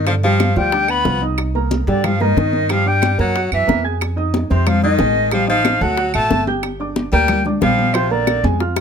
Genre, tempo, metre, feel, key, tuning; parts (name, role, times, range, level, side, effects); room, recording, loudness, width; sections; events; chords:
Afro-Cuban jazz; 183 BPM; 4/4; straight; A4 = 440 Hz
silver concert flute; melody; 0.0-8.4 s; C5 to B5; -19 LUFS; equal
edgy tenor saxophone; second line; 0.0-8.4 s; C3 to B3; -23 LUFS; left 5 dB
upright bass; bass; 0.0-8.8 s; G1 to G2; -20 LUFS; right 1 dB
dark baby grand piano; accompaniment; 0.1-8.8 s; D3 to Ab6; -22 LUFS; right 2 dB
bongos; percussion; 0.1-8.8 s; -24 LUFS; left 7 dB
claves; percussion; 0.1-8.8 s; -27 LUFS; right 11 dB
congas; percussion; 0.1-8.5 s; -23 LUFS; left 1 dB
light reverb; close, detailed microphones; -14 LUFS; side -7 dB against mid
0.0-8.8 A section
drum fill 8.3-8.8
0.1 G7; 1.4 Cm7; 2.7 Gm; 3.4 Gb9; 4.0 Fm7; 5.3 F13/A; 6.0 D; 6.6 Gm7; 7.9 Bb7